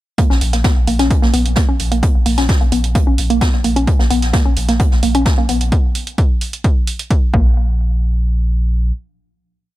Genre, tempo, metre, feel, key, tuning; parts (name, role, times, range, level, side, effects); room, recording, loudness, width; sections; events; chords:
driving peak-time techno; 130 BPM; 4/4; straight; Bb phrygian; A4 = 440 Hz
woody wave-folded pluck; riff; 0.2-7.8 s; Bb3 to Db4; -19 LUFS; equal; chorus, tube saturation, sidechain pumping, ping-pong delay
electronic hi-hat; drums; 0.2-7.2 s; -25 LUFS; right 4 dB; sidechain pumping on hats
electronic kick drum; drums; 0.2-7.4 s; -14 LUFS; equal
vintage brush drum kit; drums; 0.2-5.7 s; hi-hat, snare drum; -27 LUFS; right 2 dB; sidechain pumping on hats, high-pass filter on hats, high-pass filter on snare, high-pass filter on room
warm sub bass; bass; 0.3-8.9 s; Bb1; -17 LUFS; equal; overdrive, sidechain pumping, low-pass filter
small room ambience; -13 LUFS; side -16 dB against mid
0.2-7.6 groove; 7.6-9.8 final hit